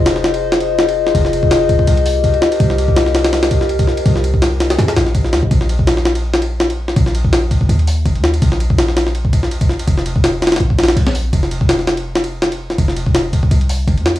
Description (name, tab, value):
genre	drum and bass, jungle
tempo	165 BPM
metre	4/4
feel	swing 54% on 16ths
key	unclear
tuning	A4 = 438 Hz
part	warbly tape-like pad	sustained chords	0.0-5.5 s	F4 to Eb5	-18 LUFS	left 3 dB	chorus, built-in reverb
part	warm 808-style bass	bass	0.0-14.2 s	F1 to F2	-17 LUFS	equal	none
part	jungle sampler-style drum kit	drums	0.1-14.2 s	hi-hat, kick drum, ride cymbal, snare drum	-14 LUFS	equal	none
room	little or no reverb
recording	dry, gritty hardware recording, cassette tape, studio ambience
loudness	-12 LUFS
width	side -14 dB against mid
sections	0.0-5.5 A section; 5.5-14.2 A section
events	drop 0.0-5.5, 5.5-14.2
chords	0.0 Fm7; 1.9 Cm7; 5.5 Bb5; 9.9 F5; 13.5 C5